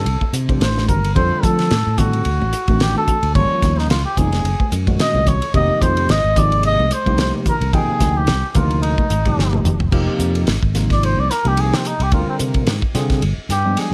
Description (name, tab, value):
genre	electric jazz fusion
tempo	109 BPM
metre	4/4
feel	swing 56% on 16ths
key	F dorian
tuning	A4 = 440 Hz
part	trumpet with cup mute	melody	0.0-13.9 s	C4 to Eb5	-23 LUFS	equal	none
part	barky tine electric piano	accompaniment	0.0-13.9 s	Bb2 to G5	-26 LUFS	equal	overdrive, analog chorus
part	fingered electric bass	bass	0.0-13.7 s	F1 to F3	-21 LUFS	equal	none
part	damped 70s drum kit	drums	0.1-13.9 s	crash cymbal, hi-hat, kick drum, ride cymbal, snare drum, toms	-23 LUFS	equal	none
part	congas	percussion	0.2-9.8 s	none	-28 LUFS	equal	none
room	light reverb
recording	none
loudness	-17 LUFS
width	mono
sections	0.0-9.9 A section; 9.9-13.9 B section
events	drum fill 9.4-9.9; muted trumpet solo 9.9-13.9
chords	0.1 C69; 1.2 F69; 2.3 D7b9; 3.4 Gm7b5; 4.4 Gbadd9; 5.5 Fm7; 12.1 Dm7b5; 13.2 G7b9